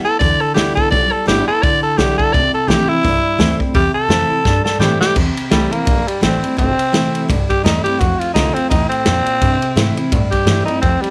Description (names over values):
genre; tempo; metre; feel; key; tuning
rockabilly; 170 BPM; 4/4; swing 58% on 8ths; C major; A4 = 440 Hz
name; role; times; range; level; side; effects
growling tenor saxophone; melody; 0.0-11.1 s; G3 to D5; -19 LUFS; equal; none
picked steel-string acoustic guitar; accompaniment; 0.0-11.1 s; F2 to F4; -22 LUFS; equal; none
upright bass; bass; 0.0-11.1 s; G1 to A2; -23 LUFS; equal; none
vintage drum kit; drums; 0.2-11.1 s; crash cymbal, hi-hat, kick drum, ride cymbal, snare drum; -21 LUFS; equal; none
room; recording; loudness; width
light reverb, studio reverb; none; -15 LUFS; mono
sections
0.0-5.2 A section; 5.2-11.1 B section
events
tenor saxophone solo 0.0-5.2; drum fill 4.5-5.2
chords
0.0 G6; 2.3 C6; 8.0 F6; 9.4 C6